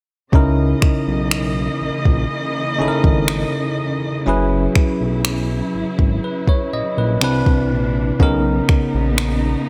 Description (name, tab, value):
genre	contemporary R&B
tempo	61 BPM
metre	4/4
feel	straight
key	C# dorian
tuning	A4 = 437 Hz
part	bell-like tine electric piano	accompaniment	0.3-9.7 s	C3 to D#5	-22 LUFS	equal	none
part	warm studio string section	sustained chords	0.3-9.7 s	C3 to D#5	-28 LUFS	equal	sidechain pumping
part	smooth synth bass	bass	0.3-9.6 s	F#1 to C#2	-23 LUFS	equal	none
part	smooth R&B drum kit	drums	0.3-9.4 s	finger snaps, kick drum	-18 LUFS	equal	none
room	little or no reverb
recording	none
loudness	-18 LUFS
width	mono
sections	0.3-9.7 A section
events	none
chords	0.3 C#m69; 4.3 F#7sus4; 7.2 Cmaj9; 8.2 Bmaj9